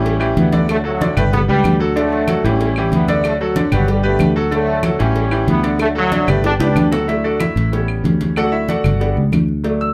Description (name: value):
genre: latin, salsa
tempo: 188 BPM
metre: 4/4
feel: straight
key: D major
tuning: A4 = 440 Hz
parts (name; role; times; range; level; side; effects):
- bright trombone section; melody; 0.0-7.1 s; A2 to D4; -22 LUFS; equal; none
- bright concert grand piano; accompaniment; 0.0-9.9 s; D3 to E6; -21 LUFS; equal; none
- fingered electric bass; bass; 0.0-9.9 s; G1 to D2; -21 LUFS; equal; none
- congas; percussion; 0.1-9.9 s; none; -23 LUFS; equal; none
- cowbell and bongos; percussion; 0.1-9.8 s; none; -30 LUFS; equal; none
- claves; percussion; 0.2-9.5 s; none; -31 LUFS; equal; none
room: wet studio ambience, RT60 0.5 s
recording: band playing live in one room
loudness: -16 LUFS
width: mono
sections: 0.0-7.1 A section; 7.1-9.9 B section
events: drum fill 6.4-7.1; grand piano solo 7.1-9.9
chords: 0.0 A7; 0.7 D; 1.3 G; 2.0 D; 2.6 A7; 3.2 G; 4.5 D; 5.2 A7; 5.8 D; 6.4 G; 7.1 D; 7.7 A7; 8.4 D; 9.0 G